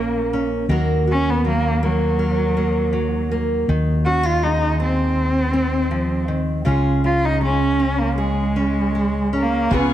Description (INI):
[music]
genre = acoustic folk-pop ballad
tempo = 80 BPM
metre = 4/4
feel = straight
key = unclear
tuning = A4 = 439 Hz
[part]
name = warm cello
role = melody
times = 0.0-9.9 s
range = F#3 to F#4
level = -21 LUFS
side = equal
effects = slapback echo
[part]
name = fingerpicked steel-string acoustic guitar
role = accompaniment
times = 0.0-9.9 s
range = A#2 to A#4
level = -22 LUFS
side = right 1 dB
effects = none
[part]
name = mellow fretless electric bass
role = bass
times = 0.0-9.9 s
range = A#1 to D#2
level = -22 LUFS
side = equal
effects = none
[part]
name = clear clarinet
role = second line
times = 9.7-9.9 s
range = C#4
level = -22 LUFS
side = left 5 dB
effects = none
[part]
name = warm chamber string section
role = sustained chords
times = 9.7-9.9 s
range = B4 to C#6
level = -26 LUFS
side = left 1 dB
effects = none
[part]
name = felt-muted upright piano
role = arpeggios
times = 9.7-9.9 s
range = B4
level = -27 LUFS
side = right 8 dB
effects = none
[part]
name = soft-mallet drum kit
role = drums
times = 9.7-9.9 s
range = crash cymbal, kick drum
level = -26 LUFS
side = equal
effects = none
[sound]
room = light reverb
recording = heavily compressed radio sound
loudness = -17 LUFS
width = side -12 dB against mid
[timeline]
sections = 0.0-9.7 A section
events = none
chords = 0.0 A#m; 0.7 D#m; 3.7 G#7/D#; 6.7 C#